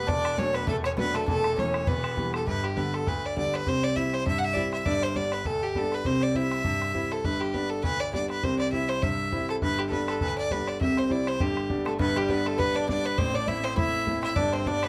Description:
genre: celtic folk, Celtic reel.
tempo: 202 BPM.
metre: 4/4.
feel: swing 56% on 8ths.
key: G major.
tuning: A4 = 440 Hz.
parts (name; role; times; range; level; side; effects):
clear fiddle; melody; 0.0-14.9 s; G4 to F#5; -31 LUFS; equal; plate reverb.
Irish bouzouki; second line; 0.0-2.3, 11.9-14.9 s; G3 to E4; -35 LUFS; equal; none.
clear grand piano; accompaniment; 0.0-14.9 s; E1 to E4; -31 LUFS; equal; none.
bodhran; percussion; 0.1-14.9 s; none; -35 LUFS; equal; none.
room: wet studio reverb, RT60 0.5 s.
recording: none.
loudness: -27 LUFS.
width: mono.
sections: 0.0-2.5 A section; 2.5-12.0 B section; 12.0-14.9 B section.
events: none.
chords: 0.1 D/E; 1.3 A/E; 1.9 Em; 2.5 G; 3.7 C; 4.9 G; 6.1 C; 7.2 G; 8.4 C; 9.6 G; 10.8 C; 11.4 G; 13.2 Am; 14.4 G.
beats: | 0.08 0.38 0.68 0.98 | 1.28 1.58 1.88 2.17 | 2.47 2.77 3.07 3.37 | 3.67 3.97 4.26 4.56 | 4.86 5.16 5.46 5.75 | 6.05 6.35 6.65 6.94 | 7.24 7.54 7.83 8.13 | 8.43 8.73 9.02 9.32 | 9.62 9.91 10.21 10.51 | 10.81 11.10 11.40 11.70 | 11.99 12.29 12.59 12.88 | 13.18 13.48 13.77 14.07 | 14.37 14.66.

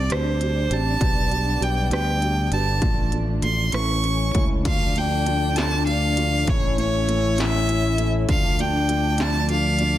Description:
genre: six-eight pop ballad.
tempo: 66 BPM (dotted quarters).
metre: 6/8.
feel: straight.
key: D harmonic minor from 4.7 s.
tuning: A4 = 441 Hz.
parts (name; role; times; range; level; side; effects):
clear violin; melody; 0.0-10.0 s; C5 to C#6; -25 LUFS; right 1 dB; none.
felt-muted upright piano; accompaniment; 0.0-10.0 s; A3 to G4; -30 LUFS; right 4 dB; none.
dark studio string section; sustained chords; 0.0-10.0 s; E3 to D4; -30 LUFS; left 2 dB; none.
modern bright fingered electric bass; bass; 0.0-10.0 s; G1 to D2; -23 LUFS; equal; none.
industrial drum kit; drums; 0.1-9.9 s; crash cymbal, hi-hat, kick drum, rim click, snare drum; -25 LUFS; equal; none.
mellow French horn section; second line; 4.7-9.8 s; D4 to E4; -29 LUFS; left 8 dB; none.
room: light reverb, small room ambience.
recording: dense, heavily limited modern master.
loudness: -19 LUFS.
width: side -13 dB against mid.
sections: 0.0-4.7 A section; 4.7-10.0 B section.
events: none.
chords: 0.0 Csus2; 1.0 G/B; 2.8 Dm/A; 3.7 A; 4.7 Dm; 6.5 A; 8.3 Dm.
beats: 0.11 | 1.01 1.92 | 2.83 3.74 | 4.65 5.57 | 6.47 7.38 | 8.29 9.19.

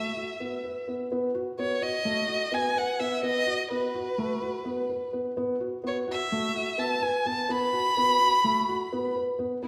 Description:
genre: contemporary instrumental, contemporary.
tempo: 254 BPM (eighths).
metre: 9/8.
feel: straight.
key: B mixolydian.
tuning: A4 = 441 Hz.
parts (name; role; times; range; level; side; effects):
warm violin; melody; 0.0-9.7 s; B4 to B5; -29 LUFS; equal; none.
felt-muted upright piano; arpeggios; 0.0-9.7 s; A3 to B4; -32 LUFS; equal; none.
room: wet scoring stage reverb, RT60 1.6 s.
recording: recorded in a church or concert hall.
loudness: -28 LUFS.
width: mono.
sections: 0.0-1.1 A section; 1.1-9.6 B section.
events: none.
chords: none.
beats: 0.16 0.40 0.64 0.87 | 1.11 1.35 1.58 1.82 2.06 2.29 2.53 2.76 3.00 | 3.24 3.47 3.71 3.95 4.18 4.42 4.66 4.89 5.13 | 5.37 5.60 5.84 6.08 6.31 6.55 6.79 7.02 7.26 | 7.50 7.73 7.97 8.21 8.44 8.68 8.91 9.15 9.39 | 9.62.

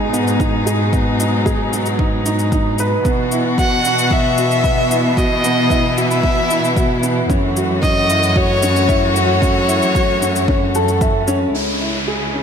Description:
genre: piano and strings electronica.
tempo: 113 BPM.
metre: 4/4.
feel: straight.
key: unclear.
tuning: A4 = 440 Hz.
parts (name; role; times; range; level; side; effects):
rich string quartet; sustained chords; 0.0-12.4 s; B2 to F#4; -22 LUFS; left 1 dB; none.
dark upright piano; riff; 0.0-12.4 s; B3 to E5; -20 LUFS; right 1 dB; tape echo.
clear chamber cello section; bass; 0.0-12.4 s; C#2 to B2; -20 LUFS; right 1 dB; sidechain pumping.
shaker; drums; 0.1-11.4 s; none; -28 LUFS; left 3 dB; overdrive.
electronic kick drum; drums; 0.4-11.1 s; none; -19 LUFS; equal; overdrive.
warm violin; melody; 3.6-11.0 s; C#5 to F#5; -18 LUFS; left 1 dB; tape echo.
downlifter; sound effects; 11.5-12.4 s; none; -22 LUFS; equal; none.
room: moderate lush hall reverb, RT60 1.9 s, small room ambience.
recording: dreamy mix soaked in reverb.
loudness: -14 LUFS.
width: side -7 dB against mid.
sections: 0.0-11.5 A section.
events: none.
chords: 0.0 G#m; 3.1 Bsus4; 7.3 F#m7; 11.5 C#m.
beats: 0.40 | 0.93 1.46 1.99 2.52 | 3.05 3.58 4.11 4.64 | 5.17 5.71 6.24 6.77 | 7.30 7.83 8.36 8.89 | 9.42 9.95 10.48 11.02 | 11.55 12.08.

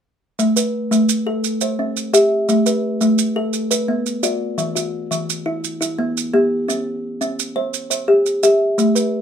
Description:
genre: southern african traditional, mbira-style interlocking cycle.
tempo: 114 BPM (dotted quarters).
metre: 12/8.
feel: straight.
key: unclear.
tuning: A4 = 440 Hz.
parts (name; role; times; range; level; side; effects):
kalimba; arpeggios; 0.4-9.2 s; E3 to E5; -17 LUFS; equal; none.
maracas; percussion; 0.4-9.1 s; none; -23 LUFS; right 10 dB; none.
room: moderate studio ambience, RT60 0.5 s.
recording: none.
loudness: -16 LUFS.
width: side -8 dB against mid.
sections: 0.4-9.2 A section.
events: none.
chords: 0.4 Asus2; 1.4 C; 2.5 A5; 3.5 Bm; 4.6 Em; 6.7 C.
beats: | 0.39 0.91 1.44 1.96 | 2.48 3.01 3.53 4.06 | 4.58 5.11 5.63 6.15 | 6.68 7.20 7.73 8.25 | 8.78.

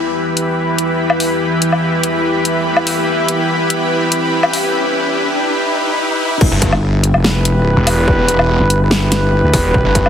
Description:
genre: heavy wobble dubstep.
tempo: 144 BPM.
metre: 4/4.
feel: half-time.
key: E minor.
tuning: A4 = 440 Hz.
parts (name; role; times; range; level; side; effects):
supersaw pad; sustained chords; 0.0-10.1 s; E3 to E6; -17 LUFS; left 1 dB; sidechain pumping, low-pass filter.
riser; sound effects; 0.0-6.4 s; none; -24 LUFS; left 1 dB; none.
deep dark ambient pad; texture; 0.0-4.7 s; E4 to G5; -24 LUFS; right 2 dB; chorus, built-in reverb, sidechain pumping.
dubstep drum kit; drums; 0.4-10.1 s; crash cymbal, hi-hat, snare drum, woodblock; -17 LUFS; left 1 dB; none.
wobble bass; bass; 6.4-10.1 s; E1 to D2; -14 LUFS; equal; chorus, overdrive.
electronic kick drum; drums; 6.4-10.0 s; none; -15 LUFS; equal; distortion.
snarling distorted saw bass; bass; 6.5-10.0 s; E1 to G1; -15 LUFS; equal; distortion, overdrive.
dark brass ensemble; stabs; 7.1-10.1 s; E4 to B4; -16 LUFS; right 1 dB; vintage 12-bit sampler grit, tape echo.
room: moderate lush hall reverb, RT60 2.0 s.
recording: heavily compressed radio sound, multiband compression, high-pass filter.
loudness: -12 LUFS.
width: side -8 dB against mid.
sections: 0.0-6.4 A section; 6.4-10.1 B section.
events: build-up 0.0-6.4; riser 0.0-6.4; drop 6.4-10.1.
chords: 0.0 Em.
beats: 0.16 0.58 0.99 | 1.41 1.83 2.24 2.66 | 3.08 3.49 3.91 4.33 | 4.74 5.16 5.58 5.99 | 6.41 6.83 7.24 7.66 | 8.08 8.49 8.91 9.33 | 9.74.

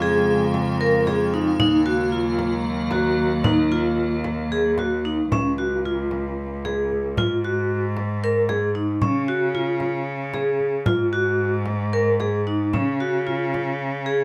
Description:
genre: contemporary instrumental, chamber music in an uneven meter.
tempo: 227 BPM (eighths).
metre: 7/8.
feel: straight.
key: Db major.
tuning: A4 = 440 Hz.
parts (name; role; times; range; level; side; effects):
icy glass pad; sustained chords; 0.0-5.3 s; Db3 to F5; -30 LUFS; equal; chorus, built-in reverb.
vibraphone with medium hard mallets; arpeggios; 0.0-14.2 s; Db4 to Bb4; -24 LUFS; equal; none.
clear cello; bass; 0.0-14.2 s; Db2 to Db3; -28 LUFS; equal; none.
frame drum; percussion; 0.5-13.8 s; none; -29 LUFS; equal; none.
room: moderate studio reverb, RT60 0.6 s.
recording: none.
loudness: -22 LUFS.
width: mono.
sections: 0.0-5.3 A section; 5.3-14.2 B section.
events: none.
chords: 0.0 Db/F; 1.6 Ebmadd9; 5.3 Db; 7.2 Ab5; 9.0 Db; 10.9 Ab5; 12.7 Db.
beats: 0.01 0.28 0.54 0.81 1.07 1.33 | 1.60 1.86 2.12 2.39 2.65 2.91 3.18 | 3.44 3.71 3.97 4.24 4.51 4.78 5.05 | 5.32 5.58 5.85 6.12 6.38 6.65 6.91 | 7.18 7.44 7.71 7.97 8.23 8.49 8.76 | 9.02 9.29 9.55 9.81 10.07 10.34 10.60 | 10.87 11.13 11.40 11.66 11.93 12.20 12.47 | 12.74 13.00 13.27 13.54 13.80 14.06.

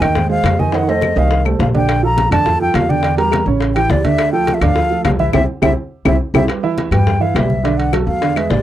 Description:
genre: Afro-Cuban jazz.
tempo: 208 BPM.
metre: 4/4.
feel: straight.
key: unclear.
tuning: A4 = 443 Hz.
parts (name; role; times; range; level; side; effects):
breathy hollow concert flute; melody; 0.0-8.6 s; D5 to Bb5; -18 LUFS; left 1 dB; none.
dark concert grand piano; accompaniment; 0.0-8.6 s; Db3 to E5; -18 LUFS; right 6 dB; none.
upright bass; bass; 0.0-8.6 s; A1 to G2; -18 LUFS; left 1 dB; none.
bongos; percussion; 0.0-8.6 s; none; -25 LUFS; left 9 dB; none.
claves; percussion; 0.0-8.5 s; none; -25 LUFS; left 22 dB; none.
congas; percussion; 0.0-8.6 s; none; -22 LUFS; left 2 dB; none.
timbales; percussion; 0.0-8.6 s; none; -24 LUFS; right 3 dB; none.
room: light reverb.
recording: dry, close 1970s-style studio recording.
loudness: -13 LUFS.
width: side -12 dB against mid.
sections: 0.0-6.5 A section; 6.5-8.6 B section.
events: drum fill 0.7-1.9, 5.3-6.5; band accent 5.3-6.5; flute solo 6.5-8.6.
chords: 0.0 Ab6; 0.7 F7; 1.9 Bbmaj7; 3.0 Em7b5; 3.6 A7; 4.2 Dm9; 5.3 C; 6.5 Em; 7.6 Bm7.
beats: 0.16 0.45 | 0.73 1.02 1.31 1.60 | 1.89 2.17 2.46 2.75 | 3.04 3.33 3.61 3.90 | 4.19 4.48 4.76 5.05 | 5.34 5.63 5.92 6.20 | 6.49 6.78 7.07 7.36 | 7.64 7.93 8.22 8.51.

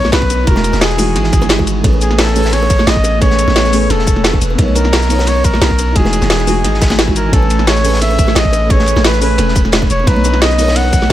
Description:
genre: liquid drum and bass.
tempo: 175 BPM.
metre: 4/4.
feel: straight.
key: A lydian.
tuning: A4 = 440 Hz.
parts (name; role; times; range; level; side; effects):
clear flugelhorn; melody; 0.0-11.1 s; G#4 to F#5; -17 LUFS; equal; tape echo.
felt-muted upright piano; accompaniment; 0.0-11.1 s; E3 to A#5; -20 LUFS; right 1 dB; none.
lush unison pad; sustained chords; 0.0-11.1 s; E3 to G#5; -22 LUFS; right 1 dB; chorus, sidechain pumping.
long sustained 808-style bass; bass; 0.0-11.1 s; E1 to B1; -15 LUFS; equal; none.
drum and bass drum kit; drums; 0.0-11.1 s; cabasa, hi-hat, snare drum; -17 LUFS; equal; none.
congas and bongos; percussion; 0.0-11.1 s; none; -23 LUFS; right 1 dB; none.
crunchy breakbeat drum kit; drums; 0.1-11.1 s; hi-hat, ride cymbal, snare drum; -22 LUFS; equal; high-pass filter on cymbals, high-pass filter on hats, high-pass filter on snare, high-pass filter on room.
electronic kick drum; drums; 0.2-11.0 s; none; -13 LUFS; equal; none.
room: light reverb, small room ambience.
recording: none.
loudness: -10 LUFS.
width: side -13 dB against mid.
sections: 0.0-11.1 A section.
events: none.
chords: 0.5 Emaj9; 1.8 Amaj9; 4.6 Bmaj9; 6.0 Emaj9; 7.3 Amaj9; 10.1 Bmaj9.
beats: 0.13 | 0.47 0.82 1.16 1.50 | 1.84 2.19 2.53 2.87 | 3.22 3.56 3.90 4.24 | 4.59 4.93 5.27 5.62 | 5.96 6.30 6.64 6.99 | 7.33 7.67 8.02 8.36 | 8.70 9.04 9.39 9.73 | 10.07 10.42 10.76 11.10.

